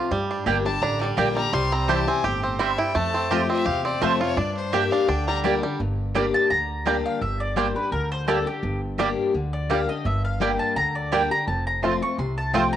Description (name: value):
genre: bluegrass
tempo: 169 BPM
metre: 4/4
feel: swing 54% on 8ths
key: G dorian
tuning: A4 = 441 Hz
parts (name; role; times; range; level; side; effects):
- bluegrass banjo; melody; 0.0-12.6 s; G3 to G4; -26 LUFS; right 4 dB; cassette tape, plate reverb
- picked steel-string acoustic guitar; accompaniment; 0.0-12.8 s; F2 to G4; -26 LUFS; left 5 dB; cassette tape, plate reverb
- upright bass; bass; 0.1-12.7 s; F1 to G2; -29 LUFS; right 1 dB; none
- mandolin; stabs; 0.5-12.6 s; Bb3 to A5; -26 LUFS; right 8 dB; cassette tape, plate reverb
- clear fiddle; second line; 0.7-5.4 s; C5 to C6; -28 LUFS; left 6 dB; cassette tape, plate reverb
- mandolin; melody; 6.3-12.8 s; G4 to C#6; -26 LUFS; equal; cassette tape, plate reverb
room: moderate booth ambience, RT60 0.2 s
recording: home recording on cassette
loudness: -21 LUFS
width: side -10 dB against mid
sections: 0.0-5.8 A section; 5.8-12.8 B section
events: fiddle solo 0.0-5.8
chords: 0.1 Gm; 1.5 C; 3.0 F; 4.4 Gm; 11.5 F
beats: | 0.11 0.47 0.82 1.18 | 1.53 1.89 2.24 2.60 | 2.96 3.31 3.67 4.02 | 4.38 4.73 5.08 5.44 | 5.79 6.15 6.50 6.86 | 7.21 7.57 7.93 8.28 | 8.64 8.99 9.35 9.70 | 10.06 10.41 10.77 11.12 | 11.48 11.83 12.19 12.54